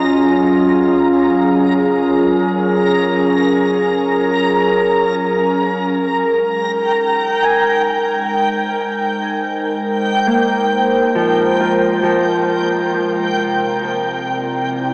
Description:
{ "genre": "ambient", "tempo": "50 BPM", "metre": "3/4", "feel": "straight", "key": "unclear", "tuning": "A4 = 440 Hz", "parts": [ { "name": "warbly tape-like pad", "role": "sustained chords", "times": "0.0-14.9 s", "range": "C3 to Eb5", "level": "-18 LUFS", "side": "equal", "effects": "chorus, built-in reverb" }, { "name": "backwards swelling texture", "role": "texture", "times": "0.0-14.9 s", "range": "G5 to Bb5", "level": "-22 LUFS", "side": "equal", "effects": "built-in reverb" }, { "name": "Celtic harp", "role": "arpeggios", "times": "7.4-14.1 s", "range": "F3 to Ab5", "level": "-22 LUFS", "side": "equal", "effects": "diffuse ambient delay" } ], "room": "wet shimmer reverb, RT60 7.2 s", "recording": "worn, warbling old tape, cassette tape, warbly pitch drift, small speaker sound", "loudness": "-16 LUFS", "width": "mono", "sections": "0.0-6.1 A section; 6.1-14.9 B section", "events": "filter sweep on ambient pad 6.1-14.9", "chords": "0.0 Gbmaj9; 6.1 Abmaj7; 13.2 C7", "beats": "0.11 1.30 | 2.49 3.69 4.90 | 6.11 7.31 8.51 | 9.69 10.87 12.05 | 13.22 14.41" }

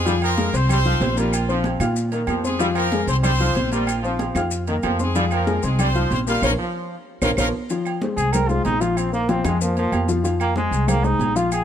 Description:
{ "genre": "latin, salsa", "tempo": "188 BPM", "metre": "4/4", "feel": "straight", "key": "F minor", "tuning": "A4 = 440 Hz", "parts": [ { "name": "bright horn section", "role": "melody", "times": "0.0-7.5 s", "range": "F3 to F5", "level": "-26 LUFS", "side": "equal", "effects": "none" }, { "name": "dark upright piano", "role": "accompaniment", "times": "0.0-11.6 s", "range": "F3 to F6", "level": "-24 LUFS", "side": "left 4 dB", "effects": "none" }, { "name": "upright bass", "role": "bass", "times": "0.0-11.6 s", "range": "Bb1 to Bb2", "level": "-23 LUFS", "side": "right 1 dB", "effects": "none" }, { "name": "brilliant trombone section", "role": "second line", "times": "0.1-7.5 s", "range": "Eb3 to G3", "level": "-28 LUFS", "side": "equal", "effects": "none" }, { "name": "agogo bells and timbales", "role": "percussion", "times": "0.1-11.6 s", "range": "none", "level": "-31 LUFS", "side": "right 8 dB", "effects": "none" }, { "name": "congas", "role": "percussion", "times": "0.1-11.6 s", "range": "none", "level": "-29 LUFS", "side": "right 2 dB", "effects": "none" }, { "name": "maracas", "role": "percussion", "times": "0.1-11.6 s", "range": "none", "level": "-34 LUFS", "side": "left 7 dB", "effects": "none" }, { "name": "claves", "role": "percussion", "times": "0.2-11.6 s", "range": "none", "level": "-35 LUFS", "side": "right 8 dB", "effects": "none" }, { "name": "brilliant trombone", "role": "melody", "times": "8.2-11.6 s", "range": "F3 to Bb4", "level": "-23 LUFS", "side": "right 1 dB", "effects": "none" } ], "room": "little or no reverb", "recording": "close, detailed microphones", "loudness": "-18 LUFS", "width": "side -9 dB against mid", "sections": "0.0-7.7 A section; 7.7-11.6 B section", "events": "drum fill 6.4-7.7; band accent 6.4-7.7; trombone solo 7.7-11.6", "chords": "0.1 Fm; 1.3 Bbsus2; 2.6 Fm; 3.9 Bbsus2; 5.2 Fm; 6.4 Bbmadd9; 7.7 Fm; 9.0 Bbsus2; 10.2 Fm", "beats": "| 0.06 0.38 0.70 1.01 | 1.33 1.65 1.97 2.29 | 2.61 2.92 3.24 3.56 | 3.88 4.20 4.51 4.83 | 5.15 5.47 5.79 6.11 | 6.42 6.74 7.06 7.38 | 7.70 8.02 8.34 8.65 | 8.97 9.29 9.61 9.93 | 10.25 10.57 10.88 11.20 | 11.52" }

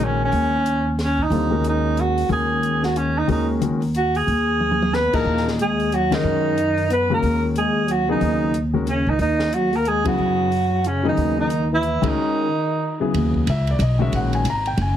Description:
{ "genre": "modal jazz", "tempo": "183 BPM", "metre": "3/4", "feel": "swing 61% on 8ths", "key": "Eb phrygian", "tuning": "A4 = 440 Hz", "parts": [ { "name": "breathy alto saxophone", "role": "melody", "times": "0.0-13.0 s", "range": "Db4 to Cb5", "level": "-21 LUFS", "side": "right 2 dB", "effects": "none" }, { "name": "warm concert grand piano", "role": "accompaniment", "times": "0.0-15.0 s", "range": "Bb2 to Bb5", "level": "-24 LUFS", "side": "left 5 dB", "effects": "none" }, { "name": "upright bass", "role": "bass", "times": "0.0-15.0 s", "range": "Gb1 to Gb2", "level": "-22 LUFS", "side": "equal", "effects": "none" }, { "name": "compact cocktail drum kit", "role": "drums", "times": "0.0-14.9 s", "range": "crash cymbal, hi-hat, kick drum, ride cymbal, snare drum, toms", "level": "-30 LUFS", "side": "right 1 dB", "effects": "none" }, { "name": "dark trombone", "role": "second line", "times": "4.9-13.0 s", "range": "Db3 to Cb4", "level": "-25 LUFS", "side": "left 3 dB", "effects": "none" } ], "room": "light reverb", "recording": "heavily compressed radio sound, multiband compression, lossy compression artefacts", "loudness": "-18 LUFS", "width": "side -10 dB against mid", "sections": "0.0-13.1 A section; 13.1-15.0 B section", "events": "drum fill 4.6-4.9; band accent 6.1, 10.0, 12.0", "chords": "0.0 Ebm7; 1.3 Ebm11; 5.3 Ebm7; 9.2 B6/D#; 13.1 Ebm7", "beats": "| 0.32 0.65 0.98 | 1.31 1.64 1.97 | 2.30 2.63 2.96 | 3.29 3.61 3.94 | 4.27 4.60 4.93 | 5.26 5.58 5.91 | 6.24 6.57 6.90 | 7.23 7.55 7.88 | 8.21 8.54 8.87 | 9.20 9.53 9.85 | 10.18 10.51 10.84 | 11.17 11.49 11.82 | 12.15 12.48 12.81 | 13.14 13.46 13.79 | 14.12 14.45 14.78" }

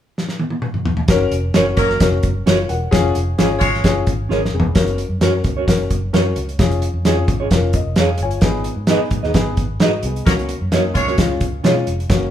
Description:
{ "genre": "uptempo 1960s-style soul", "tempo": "131 BPM", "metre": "4/4", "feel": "straight", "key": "F# major", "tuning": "A4 = 440 Hz", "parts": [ { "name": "warm soul drum kit", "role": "drums", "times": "0.2-12.2 s", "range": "hi-hat, kick drum, snare drum, toms", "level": "-18 LUFS", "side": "equal", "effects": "none" }, { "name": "dark upright piano", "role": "accompaniment", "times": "1.1-12.3 s", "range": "G#3 to G#5", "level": "-22 LUFS", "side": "left 5 dB", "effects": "none" }, { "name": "vintage muted fingered electric bass", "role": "bass", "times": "1.1-12.3 s", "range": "E1 to B2", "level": "-22 LUFS", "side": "equal", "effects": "none" }, { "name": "mellow electric guitar", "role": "stabs", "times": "1.5-11.7 s", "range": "C#4 to D#5", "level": "-22 LUFS", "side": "right 4 dB", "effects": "none" }, { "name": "clear horn section", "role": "second line", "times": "1.8-3.9, 10.3-11.3 s", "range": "F#3 to C#5", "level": "-21 LUFS", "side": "right 1 dB", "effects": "none" } ], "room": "moderate large studio reverb, RT60 1.3 s", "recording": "band playing live in one room", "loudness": "-15 LUFS", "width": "side -10 dB against mid", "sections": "0.0-1.1 A section; 1.1-4.8 B section; 4.8-12.3 C section", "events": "drum fill 0.2-1.1, 4.3-4.8; upright piano fill 7.7-8.4; band accent 10.3-12.1", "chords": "0.0 N.C.; 1.1 F#; 2.9 C#/E#; 4.8 F#; 6.6 C#/E#; 8.4 G#m; 10.3 F#/C#; 11.2 C#", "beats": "0.17 0.63 | 1.09 1.55 2.01 2.47 | 2.93 3.38 3.84 4.30 | 4.76 5.22 5.68 6.14 | 6.60 7.06 7.51 7.97 | 8.43 8.89 9.35 9.81 | 10.27 10.72 11.18 11.64 | 12.10" }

